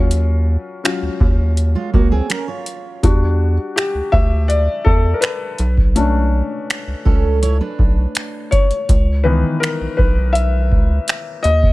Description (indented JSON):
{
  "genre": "contemporary R&B",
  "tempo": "82 BPM",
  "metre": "4/4",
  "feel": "straight",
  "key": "unclear",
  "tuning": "A4 = 444 Hz",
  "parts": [
    { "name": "felt-muted upright piano", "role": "accompaniment", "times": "0.0-11.7 s", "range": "D#3 to E5", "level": "-21 LUFS", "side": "left 3 dB", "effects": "none" },
    { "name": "rubbery square bass", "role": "bass", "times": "0.0-11.7 s", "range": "B1 to E2", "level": "-16 LUFS", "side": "equal", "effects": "none" },
    { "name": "booming analog drum machine", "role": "drums", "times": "0.1-11.7 s", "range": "finger snaps, hi-hat, kick drum", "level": "-16 LUFS", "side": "equal", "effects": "none" },
    { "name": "fingerpicked steel-string acoustic guitar", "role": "arpeggios", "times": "1.8-8.7 s", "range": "G#3 to C#5", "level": "-23 LUFS", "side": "right 6 dB", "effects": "tape echo" }
  ],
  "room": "little or no reverb",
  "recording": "none",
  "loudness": "-14 LUFS",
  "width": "side -19 dB against mid",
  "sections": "0.0-11.7 A section",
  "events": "felt piano solo 0.0-11.7",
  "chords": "0.0 D#m9; 3.0 Em9; 5.6 Bm9; 8.9 C#m9",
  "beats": "| 0.11 0.84 1.57 2.30 | 3.03 3.77 4.50 5.23 | 5.96 6.69 7.42 8.15 | 8.89 9.62 10.35 11.08"
}